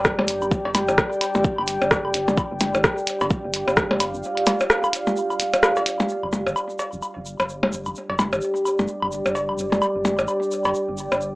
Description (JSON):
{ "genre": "minimal techno", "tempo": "129 BPM", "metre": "4/4", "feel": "swing 60% on 16ths", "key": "unclear", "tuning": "A4 = 440 Hz", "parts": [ { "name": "rubbery square bass", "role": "bass", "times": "0.0-11.4 s", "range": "F1 to A1", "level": "-33 LUFS", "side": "equal", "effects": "sidechain pumping" }, { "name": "electronic kick drum", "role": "drums", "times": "0.0-3.9 s", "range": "none", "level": "-24 LUFS", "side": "equal", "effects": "none" }, { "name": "minimal click drum kit", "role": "drums", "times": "0.0-6.0 s", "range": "hi-hat, rim click", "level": "-20 LUFS", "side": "equal", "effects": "none" }, { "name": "egg shaker", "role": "percussion", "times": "0.0-11.3 s", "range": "none", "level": "-40 LUFS", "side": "equal", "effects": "none" }, { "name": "deep dark ambient pad", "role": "texture", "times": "0.0-11.4 s", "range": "G4 to G5", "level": "-24 LUFS", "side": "equal", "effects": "chorus, built-in reverb, sidechain pumping" }, { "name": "percussion blips, woodblock and cowbell", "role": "percussion", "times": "0.2-11.2 s", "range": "none", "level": "-24 LUFS", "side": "left 1 dB", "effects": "analog delay" } ], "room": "light reverb", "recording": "dry, gritty hardware recording, cassette tape, small speaker sound", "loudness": "-20 LUFS", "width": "side -21 dB against mid", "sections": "0.0-6.1 A section; 6.1-11.4 B section", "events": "none", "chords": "0.0 G5", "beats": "0.05 | 0.51 0.98 1.44 1.91 | 2.37 2.84 3.31 3.77 | 4.24 4.70 5.17 5.63 | 6.09 6.56 7.03 7.49 | 7.96 8.42 8.89 9.35 | 9.82 10.28 10.75 11.21" }